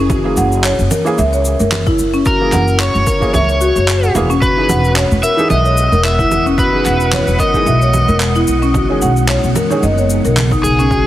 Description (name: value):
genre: organic downtempo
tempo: 111 BPM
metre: 4/4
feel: swing 55% on 16ths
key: F# mixolydian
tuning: A4 = 440 Hz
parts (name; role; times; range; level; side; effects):
- marimba with soft mallets; arpeggios; 0.0-11.1 s; C#4 to F#5; -17 LUFS; left 1 dB; tape echo
- upright bass; bass; 0.0-11.0 s; E1 to C#2; -16 LUFS; equal; sidechain pumping
- electronic congas, shaker and handclaps; drums; 0.1-11.0 s; none; -21 LUFS; right 2 dB; small room ambience
- electronic kick drum; drums; 0.1-11.0 s; none; -19 LUFS; equal; small room ambience
- felt-muted upright piano; accompaniment; 0.2-9.8 s; D#3 to G#4; -22 LUFS; right 1 dB; sidechain pumping, tape echo
- overdriven slide guitar; melody; 2.3-11.1 s; G#4 to E5; -18 LUFS; equal; digital delay
- ethereal airy pad; sustained chords; 5.2-11.1 s; C#3 to E4; -23 LUFS; equal; ensemble chorus, built-in reverb, sidechain pumping
- wind-like tuned noise texture; texture; 5.1-11.1 s; F#5; -29 LUFS; right 2 dB; built-in reverb
room: light reverb, small room ambience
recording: heavily compressed radio sound, multiband compression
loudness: -11 LUFS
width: side -13 dB against mid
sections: 0.0-11.1 A section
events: none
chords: 0.0 F#9; 4.4 Emaj7; 8.7 B69